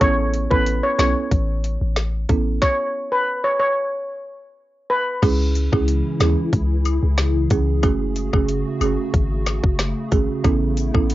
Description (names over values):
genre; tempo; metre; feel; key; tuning
dancehall; 92 BPM; 4/4; straight; C# minor; A4 = 439 Hz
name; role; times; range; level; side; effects
steel pan; melody; 0.0-5.0 s; B4 to C#5; -20 LUFS; left 1 dB; cassette tape
folk marimba with medium mallets; accompaniment; 0.0-11.1 s; G#3 to A4; -24 LUFS; right 6 dB; cassette tape
warm 808-style bass; bass; 0.0-11.1 s; F#1 to D#2; -21 LUFS; left 1 dB; none
island pop drum kit; drums; 0.0-11.1 s; crash cymbal, hi-hat, kick drum, snare drum; -21 LUFS; left 1 dB; overdrive, cassette tape
hollow soft pad; sustained chords; 5.7-11.1 s; C#3 to G#4; -26 LUFS; left 2 dB; ensemble chorus, sidechain pumping, cassette tape
woodblock and cabasa; percussion; 5.2-11.1 s; none; -31 LUFS; left 10 dB; none
room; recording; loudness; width
light reverb; home recording on cassette, nothing above 7.5 kHz; -18 LUFS; side -16 dB against mid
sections
0.0-5.2 A section; 5.2-11.1 B section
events
stop 2.6-5.2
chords
0.0 Aadd9; 2.6 N.C.; 5.2 C#m; 7.8 F#madd9; 10.4 Aadd9